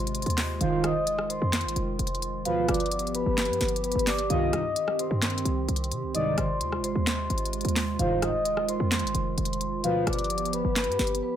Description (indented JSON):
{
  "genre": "hip hop, trap",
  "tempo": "130 BPM",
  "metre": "4/4",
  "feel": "half-time",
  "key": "unclear",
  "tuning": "A4 = 440 Hz",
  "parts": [
    { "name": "vibraphone with soft mallets", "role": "melody", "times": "0.0-11.4 s", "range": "F4 to Eb6", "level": "-29 LUFS", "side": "left 1 dB", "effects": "low-pass filter" },
    { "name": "hollow soft pad", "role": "sustained chords", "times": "0.0-11.4 s", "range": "C3 to G4", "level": "-33 LUFS", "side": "right 3 dB", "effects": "chorus" },
    { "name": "short 808-style bass", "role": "bass", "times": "0.0-11.2 s", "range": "F1 to C3", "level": "-30 LUFS", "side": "equal", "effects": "none" },
    { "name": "trap drum kit", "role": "drums", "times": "0.1-11.2 s", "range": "handclaps, hi-hat, rim click, snare drum", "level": "-30 LUFS", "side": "equal", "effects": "none" },
    { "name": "gliding portamento lead", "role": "second line", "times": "0.6-10.3 s", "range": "B4 to Eb5", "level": "-35 LUFS", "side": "equal", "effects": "chorus, phaser, ping-pong delay" },
    { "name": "analog synth brass", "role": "stabs", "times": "0.6-10.2 s", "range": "C2 to F3", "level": "-32 LUFS", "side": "right 1 dB", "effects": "chorus, ping-pong delay" }
  ],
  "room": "light reverb",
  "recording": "none",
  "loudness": "-24 LUFS",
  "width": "side -10 dB against mid",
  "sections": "0.0-11.4 A section",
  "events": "none",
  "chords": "0.0 Ab6; 0.6 Fm7; 2.5 G7; 4.3 Cm; 6.1 Ab6; 8.0 Fm7; 9.8 G7"
}